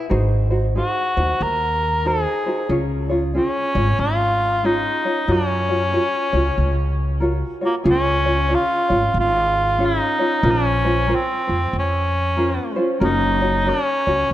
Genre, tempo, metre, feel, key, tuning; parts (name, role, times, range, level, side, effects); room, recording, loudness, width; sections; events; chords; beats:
Hawaiian; 93 BPM; 4/4; swing 63% on 8ths; F# major, Db major from 7.9 s; A4 = 440 Hz
mellow cor anglais; melody; 0.0-14.3 s; A#3 to A#4; -20 LUFS; equal; tape echo
tenor ukulele; accompaniment; 0.0-14.3 s; C#4 to C#5; -22 LUFS; equal
upright bass; bass; 0.1-14.3 s; Gb1 to F#2; -21 LUFS; equal
moderate concert hall reverb, RT60 1.8 s; -17 LUFS; side -13 dB against mid
0.0-7.9 A section; 7.9-14.3 B section
0.1 G#7; 2.7 C#; 5.3 F#maj7; 7.9 Db; 10.4 Bbmadd9; 13.0 Gb
| 0.11 0.75 1.40 2.04 | 2.69 3.34 3.98 4.63 | 5.28 5.92 6.57 7.21 | 7.86 8.50 9.15 9.79 | 10.44 11.08 11.73 12.37 | 13.02 13.66 14.31